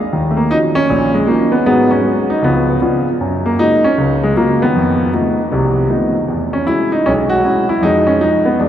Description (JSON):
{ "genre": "jazz", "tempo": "156 BPM", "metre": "4/4", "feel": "swing 64% on 8ths", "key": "Eb minor", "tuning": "A4 = 441 Hz", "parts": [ { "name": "warm grand piano", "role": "solo", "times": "0.1-8.7 s", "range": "Bb1 to Gb4", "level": "-12 LUFS", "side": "equal", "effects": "none" } ], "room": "wet cathedral reverb, RT60 7.0 s", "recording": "in a vast, echoing space", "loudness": "-12 LUFS", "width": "side -10 dB against mid", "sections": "0.1-8.7 A section", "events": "none", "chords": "0.1 Ebm9; 1.7 Abm7; 2.4 Db7b9; 3.2 Gbmaj9; 4.7 F7#11; 6.3 E69; 7.8 Fm7b5" }